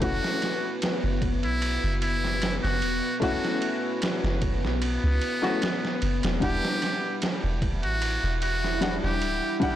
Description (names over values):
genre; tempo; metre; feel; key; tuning
trip hop; 75 BPM; 4/4; swing 53% on 16ths; unclear; A4 = 440 Hz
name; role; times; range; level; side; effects
trumpet with metal mute; melody; 0.0-9.8 s; B3 to G4; -30 LUFS; equal; tape echo
dark upright piano; accompaniment; 0.0-9.8 s; G3 to F#5; -31 LUFS; left 3 dB; harmonic tremolo, tape echo
deep dark ambient pad; sustained chords; 0.0-9.8 s; B3 to E5; -33 LUFS; left 1 dB; chorus, built-in reverb, vintage 12-bit sampler grit
soft 808-style bass; bass; 0.0-9.4 s; D1 to C#2; -28 LUFS; equal; none
trip hop sampler-style drum kit; drums; 0.0-9.8 s; kick drum, ride cymbal, snare drum; -30 LUFS; right 2 dB; overdrive
room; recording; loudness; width
light reverb; blown-out, overdriven recording, overdrive; -24 LUFS; side -12 dB against mid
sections
0.0-9.8 A section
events
none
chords
0.0 F#m7; 6.4 Em9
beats
| 0.02 0.82 1.62 2.42 | 3.22 4.02 4.82 5.62 | 6.42 7.22 8.02 8.82 | 9.62